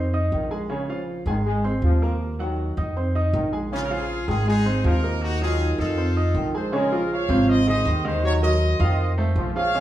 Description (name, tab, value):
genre	latin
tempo	159 BPM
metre	4/4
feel	straight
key	Bb minor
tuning	A4 = 440 Hz
part	bright upright piano	accompaniment	0.0-9.8 s	C3 to Eb6	-25 LUFS	right 1 dB	none
part	upright bass	bass	0.0-9.8 s	Ab1 to F2	-23 LUFS	equal	none
part	warm trombone section	second line	0.3-9.8 s	Db3 to Ab3	-29 LUFS	equal	none
part	bright horn section	melody	3.7-6.5 s	Db4 to Bb4	-29 LUFS	left 1 dB	none
part	clear trumpet section	melody	6.6-9.8 s	F4 to F5	-25 LUFS	right 1 dB	none
room	wet large studio reverb, RT60 1.2 s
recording	small room ambience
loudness	-20 LUFS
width	side -13 dB against mid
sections	0.0-6.7 A section; 6.7-9.8 B section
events	none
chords	0.0 F5; 0.7 Bbm7; 1.5 Abadd9; 2.2 Ebm; 3.0 F5; 3.7 Bbm7; 4.5 Abadd9; 5.2 Ebm; 6.0 F7; 6.7 Bbm7; 7.5 Ab; 8.2 Ebm; 9.0 F7